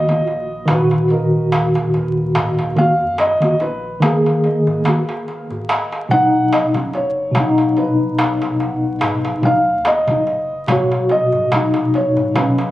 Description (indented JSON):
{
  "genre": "trip hop",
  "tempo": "72 BPM",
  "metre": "4/4",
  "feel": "swing 55% on 16ths",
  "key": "Eb minor",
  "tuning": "A4 = 440 Hz",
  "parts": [
    { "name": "felt-muted upright piano", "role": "melody", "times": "0.0-12.7 s", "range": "Bb4 to F#5", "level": "-20 LUFS", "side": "equal", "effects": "tape echo" },
    { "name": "mellow tine electric piano", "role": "accompaniment", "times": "0.0-12.7 s", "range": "Bb2 to Ab4", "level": "-16 LUFS", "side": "left 1 dB", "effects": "medium stereo tremolo, tape echo" },
    { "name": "warm sub bass", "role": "bass", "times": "0.0-10.9 s", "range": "F#1 to Gb2", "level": "-33 LUFS", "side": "equal", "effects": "none" },
    { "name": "darbuka", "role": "percussion", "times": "0.1-12.7 s", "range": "none", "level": "-22 LUFS", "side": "right 1 dB", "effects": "none" }
  ],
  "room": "moderate echo chamber reverb, RT60 1.5 s",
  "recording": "recorded on a phone in the room, club ambience, vinyl crackle",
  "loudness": "-14 LUFS",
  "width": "side -15 dB against mid",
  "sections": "0.0-12.7 A section",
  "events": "none",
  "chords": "0.0 Ebm; 6.1 B",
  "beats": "0.27 1.10 1.94 | 2.77 3.60 4.44 5.27 | 6.11 6.94 7.77 8.61 | 9.44 10.27 11.11 11.94"
}